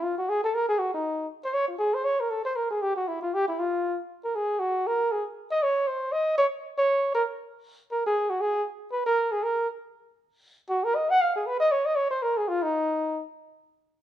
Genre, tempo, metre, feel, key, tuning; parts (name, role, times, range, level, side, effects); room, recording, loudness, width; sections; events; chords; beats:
jazz; 236 BPM; 4/4; swing 58% on 8ths; Db major; A4 = 440 Hz
mellow flugelhorn; solo; 0.0-13.2 s; Eb4 to Gb5; -24 LUFS; equal
moderate large studio reverb, RT60 1.1 s; band playing live in one room; -24 LUFS; side -12 dB against mid
0.0-7.6 A section; 7.6-14.0 B section
0.02 0.27 | 0.53 0.78 1.03 1.29 | 1.54 1.80 2.05 2.31 | 2.56 2.81 3.07 3.32 | 3.58 3.83 4.09 4.34 | 4.60 4.85 5.10 5.36 | 5.61 5.87 6.12 6.38 | 6.63 6.88 7.14 7.39 | 7.64 7.90 8.15 8.41 | 8.66 8.91 9.17 9.42 | 9.67 9.93 10.18 10.43 | 10.69 10.94 11.19 11.45 | 11.70 11.95 12.21 12.46 | 12.71 12.97 13.22